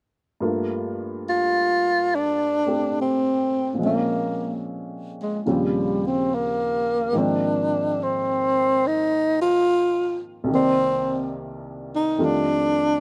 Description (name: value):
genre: jazz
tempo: 71 BPM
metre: 4/4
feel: swing 66% on 8ths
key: G minor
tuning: A4 = 444 Hz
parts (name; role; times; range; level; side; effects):
- warm upright piano; accompaniment; 0.4-13.0 s; C2 to D5; -29 LUFS; equal; none
- breathy tenor saxophone; melody; 1.3-13.0 s; F#3 to F4; -23 LUFS; equal; none
room: little or no reverb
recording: recorded outdoors, with no room sound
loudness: -23 LUFS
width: mono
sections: 0.4-13.0 A section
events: none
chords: 0.4 Gm9; 3.8 Bbm9; 5.5 Eb13; 7.1 Ab69; 10.5 Cm7; 12.2 F7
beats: | 0.41 1.25 2.10 2.94 | 3.79 4.62 5.46 6.30 | 7.13 7.97 8.81 9.66 | 10.50 11.34 12.18